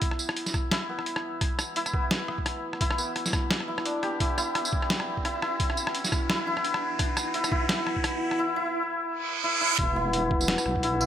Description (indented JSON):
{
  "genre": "half-time drum and bass",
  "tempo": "172 BPM",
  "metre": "4/4",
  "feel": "swing 56% on 16ths, half-time",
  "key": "E minor",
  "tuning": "A4 = 441 Hz",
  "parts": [
    { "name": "dark analog pad", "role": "sustained chords", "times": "0.0-11.1 s", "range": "E4 to F#5", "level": "-35 LUFS", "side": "left 1 dB", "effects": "chorus, sidechain pumping" },
    { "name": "santur", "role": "arpeggios", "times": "0.0-11.1 s", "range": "B3 to E5", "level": "-29 LUFS", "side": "left 1 dB", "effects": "low-pass filter, digital delay" },
    { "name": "boom bap sampler-style drum kit", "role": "drums", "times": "0.0-11.1 s", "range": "hi-hat, rim click, snare drum, tambourine", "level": "-29 LUFS", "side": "equal", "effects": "none" },
    { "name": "electronic kick drum", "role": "drums", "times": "0.0-10.8 s", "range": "none", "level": "-29 LUFS", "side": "equal", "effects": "none" },
    { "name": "riser and reverse cymbal", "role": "sound effects", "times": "0.2-9.8 s", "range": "none", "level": "-34 LUFS", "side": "right 3 dB", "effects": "none" },
    { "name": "deep soft wobble bass", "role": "bass", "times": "9.8-11.1 s", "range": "E1 to B1", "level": "-31 LUFS", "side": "equal", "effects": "chorus" }
  ],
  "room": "wet echo chamber reverb, RT60 1.3 s, digital ambience",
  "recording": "none",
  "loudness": "-25 LUFS",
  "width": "side -10 dB against mid",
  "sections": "0.0-9.8 A section; 9.8-11.1 B section",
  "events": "build-up 0.0-9.8; filter sweep on analog synth pad 0.0-9.8; filter sweep on santur 0.0-9.8; riser 0.2-8.4; reverse cymbal 9.2-9.8; drop 9.8-11.1",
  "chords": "0.0 E5"
}